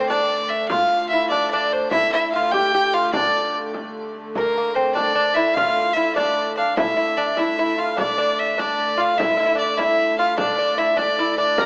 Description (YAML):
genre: medieval dance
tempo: 99 BPM (dotted quarters)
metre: 6/8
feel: straight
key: D minor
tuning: A4 = 440 Hz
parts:
  - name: clear fiddle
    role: melody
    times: 0.0-11.7 s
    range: Bb4 to Bb5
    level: -22 LUFS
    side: equal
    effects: none
  - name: lute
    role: second line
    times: 0.0-11.7 s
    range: Bb3 to Bb4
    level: -25 LUFS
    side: equal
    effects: none
  - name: rich hurdy-gurdy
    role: drone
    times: 0.0-11.7 s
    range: D3 to A3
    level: -34 LUFS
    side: equal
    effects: none
  - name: frame drum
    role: percussion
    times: 0.1-11.7 s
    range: none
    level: -32 LUFS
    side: equal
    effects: none
room: moderate lush hall reverb, RT60 3.0 s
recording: home recording on cassette, small speaker sound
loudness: -20 LUFS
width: mono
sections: 0.0-6.8 A section; 6.8-11.7 B section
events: none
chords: none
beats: 0.09 | 0.70 1.31 | 1.92 2.53 | 3.13 3.74 | 4.35 4.95 | 5.56 6.16 | 6.77 7.37 | 7.98 8.58 | 9.18 9.78 | 10.38 10.98 | 11.58